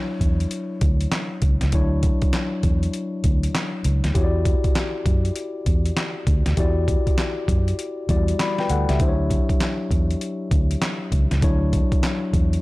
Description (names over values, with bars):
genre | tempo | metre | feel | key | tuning
R&B, new jack swing | 99 BPM | 4/4 | swing 63% on 16ths | D major | A4 = 440 Hz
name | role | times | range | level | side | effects
mellow tine electric piano | accompaniment | 0.0-12.6 s | F#3 to B5 | -26 LUFS | left 2 dB | none
vintage muted fingered electric bass | bass | 0.2-12.6 s | C#2 to F#2 | -21 LUFS | equal | none
boom bap sampler-style drum kit | drums | 0.2-12.6 s | handclaps, hi-hat, kick drum, snare drum | -22 LUFS | equal | none
room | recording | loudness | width
little or no reverb | dark, warm production | -19 LUFS | side -20 dB against mid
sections
0.0-12.6 A section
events
none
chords
0.0 Dmaj9; 4.2 Em9; 9.0 Dmaj9